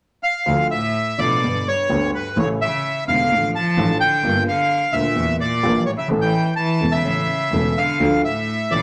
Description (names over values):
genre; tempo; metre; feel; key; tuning
tango; 127 BPM; 4/4; rubato; D harmonic minor; A4 = 440 Hz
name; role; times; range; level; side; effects
bandoneon; melody; 0.2-8.8 s; B4 to A5; -22 LUFS; equal; none
dark concert grand piano; accompaniment; 0.5-8.8 s; E1 to A4; -25 LUFS; equal; none
clear double bass; bass; 0.5-8.8 s; E1 to E2; -29 LUFS; equal; none
bright cello; second line; 0.7-8.8 s; G2 to F3; -27 LUFS; equal; none
room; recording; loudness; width
wet studio reverb, RT60 0.8 s; none; -20 LUFS; mono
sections
0.5-8.8 A section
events
none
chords
0.5 Dm; 1.4 G; 2.4 A; 3.3 Dm/A; 4.2 Gm7; 5.2 Edim; 6.1 A; 8.0 Dm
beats
0.00 | 0.47 0.95 1.42 1.90 | 2.37 2.84 3.31 3.77 | 4.24 4.70 5.17 5.63 | 6.10 6.57 7.04 7.52 | 8.01 8.48